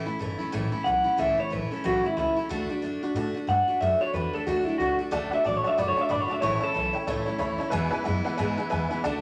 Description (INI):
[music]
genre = rockabilly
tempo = 183 BPM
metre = 4/4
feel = swing 60% on 8ths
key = A major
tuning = A4 = 438 Hz
[part]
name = picked steel-string acoustic guitar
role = accompaniment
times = 0.0-9.2 s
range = E2 to F#4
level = -33 LUFS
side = equal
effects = none
[part]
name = upright bass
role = bass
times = 0.0-9.2 s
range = F#1 to A2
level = -36 LUFS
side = equal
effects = none
[part]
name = electric guitar through a small old amp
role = melody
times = 0.8-7.0 s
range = E4 to F#5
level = -27 LUFS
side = equal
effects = none
[part]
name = honky-tonk upright piano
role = accompaniment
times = 5.1-9.2 s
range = B4 to B5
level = -33 LUFS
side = equal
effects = none
[sound]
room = wet large studio reverb, RT60 1.1 s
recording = none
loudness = -27 LUFS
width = mono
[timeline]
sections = 0.0-9.2 A section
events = honky-tonk piano fill 7.1-7.7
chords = 0.0 A; 2.5 D; 6.4 A; 7.7 E